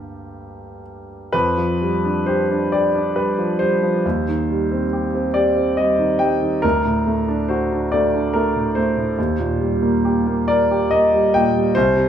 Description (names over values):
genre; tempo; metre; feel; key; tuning
classical, romantic nocturne for solo piano; 38-49 BPM (dotted quarters); 12/8; rubato; G minor; A4 = 441 Hz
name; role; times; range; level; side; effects
clear concert grand piano; solo; 0.0-12.1 s; C2 to G5; -17 LUFS; equal; none
room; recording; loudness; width
moderate large studio reverb, RT60 0.8 s; minimal, uncompressed stereo recording; -16 LUFS; side -9 dB against mid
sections
0.0-12.1 A section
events
none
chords
0.0 Gm; 1.3 G7/F; 4.0 Cm/Eb; 6.6 D; 9.2 Eb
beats
| 1.33 2.73 4.04 5.36 | 6.63 7.93 9.18 10.48 | 11.75